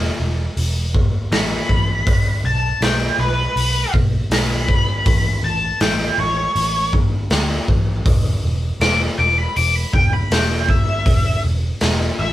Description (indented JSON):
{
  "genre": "blues rock power trio and southern rock",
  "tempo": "80 BPM",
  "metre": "4/4",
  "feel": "straight",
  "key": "unclear",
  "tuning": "A4 = 439 Hz",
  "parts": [
    { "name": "vintage muted picked electric bass", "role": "bass", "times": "0.0-12.3 s", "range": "E1 to D2", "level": "-21 LUFS", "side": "equal", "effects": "none" },
    { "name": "raw garage drum kit", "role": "drums", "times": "0.6-12.0 s", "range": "hi-hat, kick drum, snare drum", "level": "-18 LUFS", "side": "equal", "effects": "none" },
    { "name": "octave-fuzz lead guitar", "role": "melody", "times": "1.3-12.3 s", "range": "B4 to D6", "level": "-20 LUFS", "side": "left 1 dB", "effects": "wah, distortion" }
  ],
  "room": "light reverb",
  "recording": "band playing live in one room",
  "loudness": "-16 LUFS",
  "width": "side -14 dB against mid",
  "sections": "0.0-12.3 A section",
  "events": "lead electric guitar solo 0.0-12.3",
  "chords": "0.0 E5; 2.1 N.C.; 5.1 A; 8.1 N.C."
}